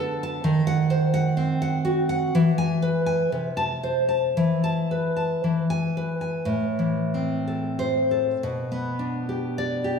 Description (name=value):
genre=romantic piece for solo classical guitar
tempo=55-70 BPM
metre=2/4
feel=rubato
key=A minor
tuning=A4 = 440 Hz
part: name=nylon-string guitar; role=solo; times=0.0-10.0 s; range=A2 to A5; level=-22 LUFS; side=equal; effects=none
room=wet recital hall reverb, RT60 1.7 s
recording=recorded in a church or concert hall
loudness=-22 LUFS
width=side -6 dB against mid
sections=0.0-6.5 A section; 6.5-10.0 B section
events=none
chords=0.4 D#m6; 2.3 E; 3.3 Am/C; 4.4 Esus4; 5.5 E; 6.5 Am; 8.4 G/B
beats=| 0.45 1.38 | 2.35 3.33 | 4.38 5.45 | 6.48 7.46 | 8.40 9.28